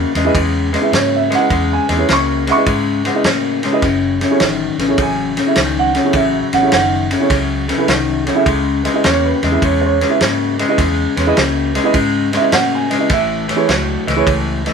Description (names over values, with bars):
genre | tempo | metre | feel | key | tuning
electric blues shuffle | 104 BPM | 4/4 | swing 66% on 8ths | C# minor | A4 = 439 Hz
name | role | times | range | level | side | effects
electric guitar through a small old amp | riff | 0.0-14.7 s | F#2 to A#3 | -17 LUFS | left 5 dB | none
vintage muted fingered electric bass | bass | 0.0-14.7 s | F#1 to A2 | -22 LUFS | equal | none
dark upright piano | accompaniment | 0.1-14.7 s | E4 to C#6 | -17 LUFS | right 7 dB | none
warm soul drum kit | drums | 0.2-14.7 s | kick drum, ride cymbal, snare drum | -20 LUFS | equal | none
room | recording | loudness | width
light reverb | band playing live in one room | -13 LUFS | side -6 dB against mid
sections
0.0-14.7 A section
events
none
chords
0.0 C#m9; 3.8 F#m9; 8.5 C#m9; 13.1 Amaj7